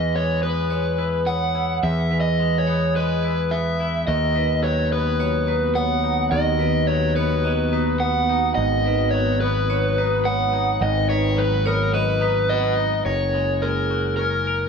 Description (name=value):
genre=rock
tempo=107 BPM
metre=4/4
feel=straight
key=B major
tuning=A4 = 440 Hz
part: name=raw garage guitar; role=melody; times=0.0-14.7 s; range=A#4 to F#5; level=-22 LUFS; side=equal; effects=overdrive, tape echo
part: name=twangy electric guitar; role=arpeggios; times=0.0-14.7 s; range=G#2 to A#4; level=-28 LUFS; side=left 3 dB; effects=spring reverb
part: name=vibraphone with hard mallets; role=arpeggios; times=0.0-14.7 s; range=G#4 to D#5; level=-29 LUFS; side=right 4 dB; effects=none
part: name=growling picked electric bass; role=bass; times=0.0-14.7 s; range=F#1 to E2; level=-23 LUFS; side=equal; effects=overdrive
part: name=ethereal airy pad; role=sustained chords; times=5.1-13.0 s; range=D#3 to B4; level=-30 LUFS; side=right 1 dB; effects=ensemble chorus, built-in reverb
room=moderate stone room reverb, RT60 1.0 s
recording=band playing live in one room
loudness=-18 LUFS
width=side -6 dB against mid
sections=0.0-13.1 A section; 13.1-14.7 B section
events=none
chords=0.0 E; 4.1 B/D#; 8.6 G#m7; 13.1 F#add9